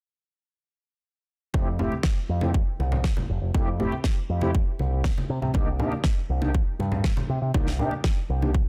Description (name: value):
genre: nu-disco, nu disco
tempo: 120 BPM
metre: 4/4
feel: straight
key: F major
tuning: A4 = 440 Hz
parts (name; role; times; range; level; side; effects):
- mellow synth brass; accompaniment; 1.5-8.5 s; A3 to G4; -33 LUFS; equal; chorus, delay
- picked electric bass with an envelope filter; bass; 1.5-8.6 s; F1 to C3; -28 LUFS; equal; none
- electronic kick drum; drums; 1.5-8.6 s; none; -26 LUFS; equal; none
- congas; percussion; 1.5-8.5 s; none; -35 LUFS; equal; none
- snare drum; drums; 2.0-8.1 s; none; -32 LUFS; equal; none
room: small room ambience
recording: dense, heavily limited modern master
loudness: -25 LUFS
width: mono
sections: 1.5-8.7 A section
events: none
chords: 1.5 Fmaj9; 5.3 Cm9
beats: | 1.54 2.04 2.54 3.04 | 3.54 4.04 4.54 5.04 | 5.54 6.04 6.54 7.04 | 7.54 8.04 8.54